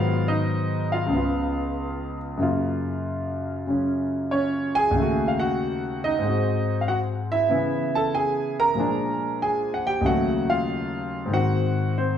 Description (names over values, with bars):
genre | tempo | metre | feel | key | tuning
solo jazz | 94 BPM | 4/4 | swing 69% on 8ths | unclear | A4 = 439 Hz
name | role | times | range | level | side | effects
clear concert grand piano | solo | 0.0-12.2 s | C#2 to A#5 | -22 LUFS | equal | none
room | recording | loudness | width
wet large studio reverb, RT60 1.2 s | band playing live in one room | -22 LUFS | side -9 dB against mid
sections
0.0-12.2 A section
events
none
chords
0.0 G#m7; 1.1 C#7; 2.4 F#maj7; 4.9 D#m7b5; 6.2 G#7; 7.5 C#m7; 8.8 A#7; 10.0 D#m7b5; 11.3 G#7